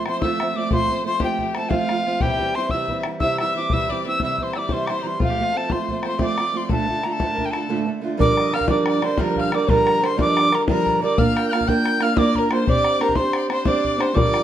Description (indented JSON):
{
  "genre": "celtic folk, Celtic slip jig",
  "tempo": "120 BPM (dotted quarters)",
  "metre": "9/8",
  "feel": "straight",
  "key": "G minor from 8.2 s",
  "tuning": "A4 = 440 Hz",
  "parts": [
    { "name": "bright wooden whistle", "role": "melody", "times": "0.0-14.4 s", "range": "F5 to G6", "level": "-23 LUFS", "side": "left 1 dB", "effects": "slapback echo" },
    { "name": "clear fiddle", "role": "second line", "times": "0.0-14.4 s", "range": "F4 to G5", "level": "-30 LUFS", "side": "left 5 dB", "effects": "none" },
    { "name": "fingerpicked steel-string acoustic guitar", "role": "accompaniment", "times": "0.0-14.4 s", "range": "D2 to C5", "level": "-22 LUFS", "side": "right 3 dB", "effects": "none" },
    { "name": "bodhran", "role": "percussion", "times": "0.1-14.4 s", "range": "none", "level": "-24 LUFS", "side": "left 2 dB", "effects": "none" },
    { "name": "mellow hollow wooden flute", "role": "second line", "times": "8.2-14.4 s", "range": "Bb4 to G5", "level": "-26 LUFS", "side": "right 3 dB", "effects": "none" }
  ],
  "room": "moderate studio reverb, RT60 0.5 s",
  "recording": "dark, warm production",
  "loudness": "-18 LUFS",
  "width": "side -11 dB against mid",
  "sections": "0.0-8.2 A section; 8.2-14.4 B section",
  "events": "none",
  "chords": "0.0 F; 2.2 C; 5.2 F; 6.7 Dm; 8.2 Gm7; 11.2 Bb; 12.7 Csus2"
}